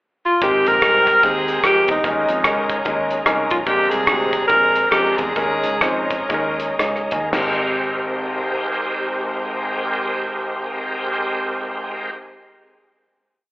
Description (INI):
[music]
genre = uptempo gospel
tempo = 109-148 BPM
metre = 4/4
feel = swing 60% on 8ths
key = Ab major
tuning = A4 = 440 Hz
[part]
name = warm tenor saxophone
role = melody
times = 0.3-6.1 s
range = Eb4 to Bb4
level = -16 LUFS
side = equal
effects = none
[part]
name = warm concert grand piano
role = accompaniment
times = 0.4-12.1 s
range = Ab1 to Ab5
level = -23 LUFS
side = left 1 dB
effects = slapback echo
[part]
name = bright tonewheel organ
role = sustained chords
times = 0.4-12.1 s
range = Ab3 to G5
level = -26 LUFS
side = right 1 dB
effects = slow rotary speaker, chorus vibrato
[part]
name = warm studio string section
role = sustained chords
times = 0.4-12.1 s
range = Ab3 to Bb5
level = -28 LUFS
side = equal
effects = none
[part]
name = fingered electric bass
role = bass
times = 0.4-12.1 s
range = Ab1 to F2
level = -33 LUFS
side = right 1 dB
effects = none
[part]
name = warm soul drum kit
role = drums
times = 0.4-7.5 s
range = crash cymbal, hi-hat, kick drum, rim click, snare drum, toms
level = -23 LUFS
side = equal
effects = none
[sound]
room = light reverb, studio ambience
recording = live gig heard through the venue's PA, club reverb, telephone sound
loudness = -17 LUFS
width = side -20 dB against mid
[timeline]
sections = 0.0-0.4 pickup bar; 0.4-7.3 breakdown; 7.3-11.7 final chord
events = slowing down 3.7-7.3; grand piano fill 6.5-7.3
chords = 0.4 Abmaj9; 2.0 Eb7sus4; 3.7 Bb9; 5.4 Eb7sus4; 7.3 Abmaj9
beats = 0.01 | 0.42 0.82 1.23 1.63 | 2.04 2.44 2.85 3.26 | 3.67 4.08 4.49 4.92 | 5.36 5.82 6.29 6.79 | 7.33 7.88 8.43 8.98 | 9.53 10.08 10.63 11.18